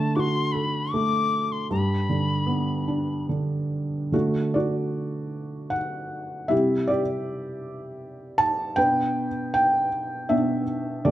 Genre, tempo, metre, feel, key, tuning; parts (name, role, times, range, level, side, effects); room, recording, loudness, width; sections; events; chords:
celtic folk, Celtic slow air; 69-82 BPM; 3/4; rubato; G major; A4 = 440 Hz
mellow wooden whistle; melody; 0.0-3.3 s; A5 to D6; -28 LUFS; left 5 dB
felt-muted upright piano; accompaniment; 0.0-11.1 s; G2 to A5; -23 LUFS; right 1 dB
wet large studio reverb, RT60 1.0 s; band playing live in one room; -22 LUFS; side -13 dB against mid
0.0-4.1 A section; 4.1-11.1 B section
felt piano solo 4.1-11.1
0.0 D; 1.7 G; 4.1 D; 6.5 Cadd9; 8.8 G/B